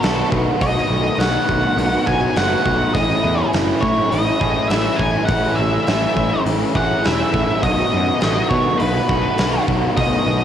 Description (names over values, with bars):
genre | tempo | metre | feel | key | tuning
rock, shoegaze and dream pop | 103 BPM | 4/4 | straight | B mixolydian | A4 = 440 Hz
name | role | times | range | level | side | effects
octave-fuzz lead guitar | melody | 0.0-10.4 s | B4 to G#5 | -21 LUFS | equal | distortion, cassette tape, analog delay
electric guitar through a small old amp | arpeggios | 0.0-10.4 s | E3 to G#4 | -30 LUFS | right 9 dB | none
biting overdriven guitar | riff | 0.0-10.4 s | A2 to F#4 | -24 LUFS | right 9 dB | reverse reverb, cassette tape
overdriven semi-hollow guitar | riff | 0.0-10.4 s | A2 to F#4 | -22 LUFS | left 8 dB | analog chorus, cassette tape
fuzz picked electric bass | bass | 0.0-10.4 s | E1 to B2 | -22 LUFS | right 1 dB | overdrive
huge arena drum kit | drums | 0.0-10.1 s | hi-hat, kick drum, snare drum | -23 LUFS | equal | none
room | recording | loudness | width
light reverb | home recording on cassette | -15 LUFS | side -9 dB against mid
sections
0.0-10.4 A section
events
none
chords
0.0 B7; 3.0 Amaj7; 7.6 B7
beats
0.03 | 0.61 1.20 1.78 2.37 | 2.95 3.54 4.12 4.71 | 5.29 5.88 6.46 7.04 | 7.63 8.22 8.80 9.39 | 9.98